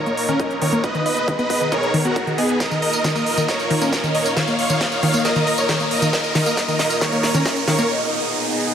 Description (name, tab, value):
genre	uplifting trance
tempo	136 BPM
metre	4/4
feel	straight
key	unclear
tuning	A4 = 440 Hz
part	supersaw chords	melody	0.0-7.9 s	Cb4 to F5	-21 LUFS	equal	sidechain pumping, low-pass filter, dub echo
part	lush unison pad	sustained chords	0.0-8.7 s	Bb3 to Eb5	-26 LUFS	equal	chorus, phaser, sidechain pumping
part	riser	sound effects	0.0-8.7 s	none	-27 LUFS	equal	none
part	wide unison pluck	arpeggios	0.1-7.8 s	Eb3 to Eb5	-23 LUFS	left 1 dB	sidechain pumping, dub echo
part	big-room dance drum kit	drums	0.1-7.9 s	hi-hat, snare drum, tambourine	-25 LUFS	right 1 dB	sidechain pumping on hats, high-pass filter on hats, studio reverb, high-pass filter on snare, sidechain pumping on perc, high-pass filter on perc
part	electronic kick drum	drums	0.4-7.5 s	none	-29 LUFS	equal	high-pass filter on kick, studio reverb
room	moderate lush hall reverb, RT60 1.9 s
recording	none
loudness	-17 LUFS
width	side -8 dB against mid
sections	0.0-8.7 A section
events	build-up 0.0-8.7; riser 0.0-8.7; filter sweep on synth pluck 0.0-8.7; drum fill 2.6-7.9; break 7.9-8.7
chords	0.0 Ebsus2; 0.8 Abm; 2.6 Ebsus2; 7.9 Abm